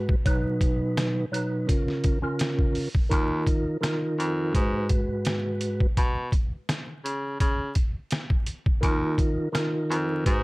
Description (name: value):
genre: hip hop, boom-bap hip-hop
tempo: 84 BPM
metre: 4/4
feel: swing 55% on 16ths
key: Eb minor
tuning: A4 = 440 Hz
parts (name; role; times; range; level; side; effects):
- percussive tonewheel organ; accompaniment; 0.0-10.4 s; Ab2 to Cb5; -26 LUFS; right 1 dB; fast rotary speaker, high-pass filter, low-pass filter
- trip hop sampler-style drum kit; drums; 0.1-10.4 s; hi-hat, kick drum, rim click, snare drum; -24 LUFS; equal; none
- warm baritone saxophone; bass; 3.1-10.4 s; Eb2 to Db3; -28 LUFS; equal; none
room: digital ambience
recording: dark, warm production, vinyl crackle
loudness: -23 LUFS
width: side -23 dB against mid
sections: 0.0-10.4 A section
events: none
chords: 0.3 B; 1.7 Bbm/Db; 3.1 Ebsus2; 4.5 Abm7; 6.0 Bsus2; 7.4 N.C.; 8.8 Ebsus2